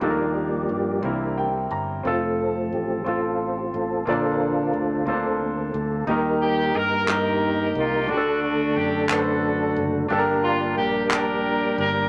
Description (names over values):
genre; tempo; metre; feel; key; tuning
slow gospel; 60 BPM (dotted quarters); 6/8; straight; unclear; A4 = 440 Hz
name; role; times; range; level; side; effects
clear concert grand piano; accompaniment; 0.0-12.1 s; G2 to Bb5; -29 LUFS; equal; none
mellow tonewheel organ; sustained chords; 0.0-12.1 s; D3 to D5; -27 LUFS; equal; slow rotary speaker, chorus vibrato
fingered electric bass; bass; 0.0-12.1 s; F1 to G2; -33 LUFS; equal; none
clear horn section; melody; 6.4-12.1 s; A3 to Bb4; -27 LUFS; equal; none
group handclap; percussion; 7.1-11.4 s; none; -27 LUFS; equal; none
room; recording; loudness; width
moderate club reverb, RT60 0.7 s; none; -23 LUFS; mono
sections
0.0-6.1 A section; 6.1-12.1 B section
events
tonewheel organ solo 0.0-6.1; grand piano fill 1.0-2.0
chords
0.0 Ebmaj7; 1.0 C7; 2.0 F; 4.1 Bbmaj7; 6.1 Eb; 8.1 D; 10.1 Gm